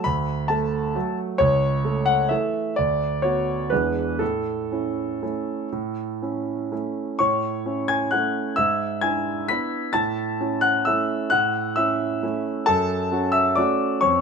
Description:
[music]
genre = classical, piano waltz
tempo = 116-142 BPM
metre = 3/4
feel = rubato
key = A major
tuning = A4 = 440 Hz
[part]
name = clear concert grand piano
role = solo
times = 0.0-14.2 s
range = C#2 to B6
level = -21 LUFS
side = equal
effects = none
[sound]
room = light reverb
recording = minimal, uncompressed stereo recording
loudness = -21 LUFS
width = side -5 dB against mid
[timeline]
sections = 0.0-7.2 A section; 7.2-14.2 A section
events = none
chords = 0.0 D; 1.4 A/C#; 2.8 Bm/D; 3.7 E7; 4.2 A; 8.6 E7/G#; 9.9 A; 12.7 F#m

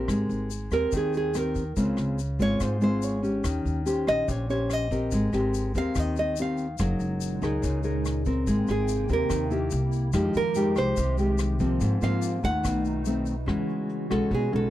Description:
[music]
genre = bossa nova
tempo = 144 BPM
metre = 4/4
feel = straight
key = Ab major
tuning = A4 = 439 Hz
[part]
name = nylon-string guitar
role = accompaniment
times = 0.0-14.7 s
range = Ab2 to C5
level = -27 LUFS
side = left 1 dB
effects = none
[part]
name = hollow soft pad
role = sustained chords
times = 0.0-0.1, 6.8-14.7 s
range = Bb2 to G5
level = -36 LUFS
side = equal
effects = ensemble chorus
[part]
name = upright bass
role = bass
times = 0.0-14.7 s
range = Gb1 to Ab2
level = -30 LUFS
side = equal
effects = none
[part]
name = vintage brush drum kit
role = drums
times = 0.1-14.6 s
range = hi-hat, kick drum, rim click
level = -33 LUFS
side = equal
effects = none
[part]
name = tube shaker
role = percussion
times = 0.1-13.5 s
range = none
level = -43 LUFS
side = left 23 dB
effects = none
[part]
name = nylon-string guitar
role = melody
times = 0.7-14.7 s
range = Ab4 to Gb5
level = -28 LUFS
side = right 2 dB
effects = none
[sound]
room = little or no reverb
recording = dry, close 1970s-style studio recording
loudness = -24 LUFS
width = side -14 dB against mid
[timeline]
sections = 0.1-13.5 A section; 13.5-14.7 A section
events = nylon-string guitar solo 0.1-14.7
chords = 0.1 Abmaj9; 1.8 Dbmaj7; 3.4 Eb6; 5.1 Abmaj9; 6.8 Gb69; 8.5 Abmaj9; 9.7 C7; 10.1 Fm9; 11.8 Ab69; 12.6 B7b9; 13.5 E69

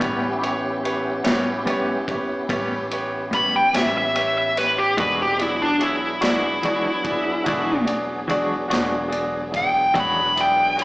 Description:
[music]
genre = slow blues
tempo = 48 BPM (dotted quarters)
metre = 12/8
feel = straight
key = E mixolydian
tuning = A4 = 440 Hz
[part]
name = clean electric guitar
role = accompaniment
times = 0.0-10.2 s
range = A2 to F#4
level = -26 LUFS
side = left 1 dB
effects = tremolo, slapback echo
[part]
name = clear grand piano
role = accompaniment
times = 0.0-10.8 s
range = E4 to D5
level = -26 LUFS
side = right 1 dB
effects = slapback echo
[part]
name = tonewheel organ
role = sustained chords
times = 0.0-10.8 s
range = F#3 to B4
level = -29 LUFS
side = equal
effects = overdrive, chorus vibrato, slow rotary speaker
[part]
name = upright bass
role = bass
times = 0.0-10.8 s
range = E1 to A1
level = -36 LUFS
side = equal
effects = none
[part]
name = swinging big-band drum kit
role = drums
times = 0.0-10.8 s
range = kick drum, ride cymbal, snare drum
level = -29 LUFS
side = equal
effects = none
[part]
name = dark smooth lead guitar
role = melody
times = 3.3-10.8 s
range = D4 to B5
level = -19 LUFS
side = equal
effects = overdrive, slapback echo
[sound]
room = light reverb, studio ambience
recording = live gig heard through the venue's PA, club reverb, small speaker sound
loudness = -19 LUFS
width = side -23 dB against mid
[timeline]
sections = 0.0-10.8 A section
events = lead electric guitar solo 0.0-10.8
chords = 0.0 A9; 5.0 E9

